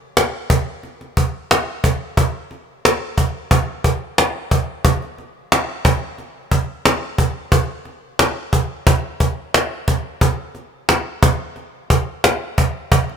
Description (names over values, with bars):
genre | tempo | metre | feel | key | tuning
rock | 90 BPM | 4/4 | straight | none | none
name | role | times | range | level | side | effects
cajon | drums | 0.2-13.2 s | none | -15 LUFS | equal | none
room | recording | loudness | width
little or no reverb | none | -16 LUFS | side -7 dB against mid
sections
0.0-13.2 A section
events
none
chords
none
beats
0.17 0.84 1.51 | 2.18 2.85 3.51 4.18 | 4.85 5.52 6.19 6.86 | 7.53 8.20 8.87 9.54 | 10.22 10.89 11.57 12.24 | 12.92